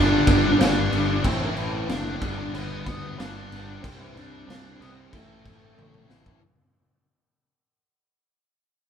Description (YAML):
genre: quiet-loud alternative rock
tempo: 92 BPM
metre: 4/4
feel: straight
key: A minor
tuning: A4 = 442 Hz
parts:
  - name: octave-fuzz lead guitar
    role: melody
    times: 0.0-6.1 s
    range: E3 to D5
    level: -26 LUFS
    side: left 1 dB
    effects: distortion
  - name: fuzz guitar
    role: riff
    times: 0.0-6.4 s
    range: G2 to C4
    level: -31 LUFS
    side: right 7 dB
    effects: distortion
  - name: sludgy distorted guitar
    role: riff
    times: 0.0-6.4 s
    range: G2 to E4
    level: -31 LUFS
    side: left 8 dB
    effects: overdrive
  - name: fuzz picked electric bass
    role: bass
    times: 0.0-6.4 s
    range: F#1 to D2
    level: -30 LUFS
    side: equal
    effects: overdrive
  - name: raw garage drum kit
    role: drums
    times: 0.3-6.4 s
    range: crash cymbal, kick drum, snare drum, toms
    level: -25 LUFS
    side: equal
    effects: none
room: moderate studio reverb, RT60 0.5 s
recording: band playing live in one room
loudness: -21 LUFS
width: side -8 dB against mid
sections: 0.0-6.4 A section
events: fade-out 0.0-6.4; drum fill 5.8-6.4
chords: 0.0 G; 1.2 Am; 2.2 G; 3.8 Csus2; 5.1 Am